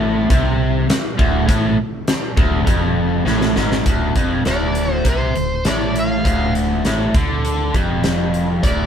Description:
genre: classic rock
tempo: 101 BPM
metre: 4/4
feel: straight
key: D minor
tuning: A4 = 436 Hz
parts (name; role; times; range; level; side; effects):
- biting overdriven guitar; riff; 0.0-8.9 s; D2 to D3; -19 LUFS; equal; none
- mellow fretless electric bass; bass; 0.0-8.9 s; D1 to D2; -22 LUFS; equal; none
- huge arena drum kit; drums; 0.3-8.8 s; hi-hat, kick drum, snare drum; -19 LUFS; equal; none
- bluesy overdriven lead guitar; melody; 4.5-8.9 s; C5 to F5; -23 LUFS; equal; distortion
room: light reverb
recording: band playing live in one room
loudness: -15 LUFS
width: side -8 dB against mid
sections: 0.0-3.9 A section; 3.9-8.9 B section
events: drum fill 3.3-3.9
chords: 0.0 Dm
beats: 0.31 0.90 | 1.49 2.08 2.67 3.27 | 3.86 4.45 5.05 5.64 | 6.24 6.84 7.43 8.03 | 8.63

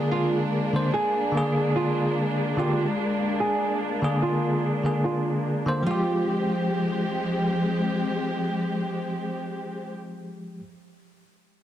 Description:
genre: trip hop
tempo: 73 BPM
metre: 4/4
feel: straight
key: unclear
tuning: A4 = 440 Hz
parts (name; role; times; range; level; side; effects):
- bell-like tine electric piano; accompaniment; 0.0-10.6 s; D3 to C5; -26 LUFS; equal; tremolo, vintage 12-bit sampler grit, tape echo
- warm symphonic string section; sustained chords; 0.0-9.9 s; F3 to G4; -28 LUFS; left 1 dB; low-pass filter
- nylon-string guitar; arpeggios; 0.1-6.2 s; F4 to Ab4; -29 LUFS; right 2 dB; vintage 12-bit sampler grit, low-pass filter, tape echo
room: moderate echo chamber reverb, RT60 2.4 s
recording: dense, heavily limited modern master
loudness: -23 LUFS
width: side -11 dB against mid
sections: 0.0-5.9 A section; 5.9-9.1 B section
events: filter sweep on nylon-string guitar 0.0-5.9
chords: 0.0 Bb7; 5.9 Fmadd9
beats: 0.10 0.93 1.75 | 2.57 3.39 4.21 5.04 | 5.86 6.68 7.50 8.32

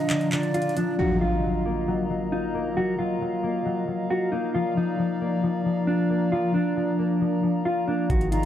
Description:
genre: hip hop, trap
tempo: 135 BPM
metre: 4/4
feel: half-time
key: Eb harmonic minor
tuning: A4 = 440 Hz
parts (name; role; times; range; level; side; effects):
- mellow electric guitar; melody; 0.0-8.5 s; D4 to Gb4; -27 LUFS; right 3 dB; low-pass filter, analog delay
- breathy mellow silver concert flute; second line; 0.0-0.9, 8.3-8.5 s; D5 to Bb5; -32 LUFS; right 3 dB; analog delay
- concert harp; accompaniment; 0.0-8.5 s; D3 to F4; -25 LUFS; left 3 dB; low-pass filter
- hollow soft pad; sustained chords; 0.0-8.5 s; F4 to Bb5; -35 LUFS; equal; chorus
- trap drum kit; drums; 0.1-0.9, 8.1-8.5 s; handclaps, hi-hat, kick drum; -28 LUFS; equal; none
- impact; sound effects; 1.0-2.8 s; none; -31 LUFS; equal; none
- clean 808-style bass; bass; 8.1-8.5 s; Ab1; -25 LUFS; equal; none
room: light reverb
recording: dry, gritty hardware recording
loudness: -22 LUFS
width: side -10 dB against mid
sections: 1.0-8.5 A section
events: break 0.0-1.0; impact 1.0-2.8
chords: 0.0 Bb; 1.0 Ebmadd9; 4.5 Bb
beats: 0.10 0.54 | 0.99 1.43 1.88 2.32 | 2.77 3.21 3.65 4.10 | 4.54 4.99 5.43 5.88 | 6.32 6.77 7.21 7.66 | 8.10

